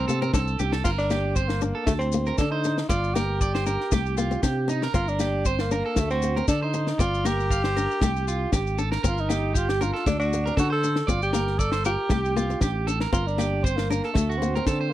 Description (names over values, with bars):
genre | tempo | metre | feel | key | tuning
highlife guitar band | 117 BPM | 4/4 | straight | G minor | A4 = 440 Hz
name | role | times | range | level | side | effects
breathy tenor saxophone | melody | 0.0-14.9 s | A3 to A4 | -28 LUFS | equal | none
electric guitar at the edge of break-up | arpeggios | 0.0-14.9 s | Eb4 to F5 | -30 LUFS | right 6 dB | slapback echo
fingered electric bass | bass | 0.0-14.9 s | G1 to D3 | -27 LUFS | equal | none
flamenco guitar | accompaniment | 0.1-14.9 s | A3 to F4 | -31 LUFS | left 5 dB | none
maracas | percussion | 0.1-14.8 s | none | -38 LUFS | left 19 dB | none
tight funk drum kit | drums | 0.3-14.8 s | crash cymbal, kick drum, snare drum | -26 LUFS | equal | none
room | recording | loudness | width
small room ambience | dry, close 1970s-style studio recording | -22 LUFS | side -13 dB against mid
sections
0.8-14.9 A section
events
none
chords
0.0 C5; 0.8 Gm; 1.9 D5; 2.9 Gm; 3.9 Cm; 4.9 Gm; 6.0 D; 7.0 Gm7; 8.0 C5; 9.0 Gm; 10.1 D; 11.1 Gm7; 12.1 C5; 13.1 Gm; 14.2 D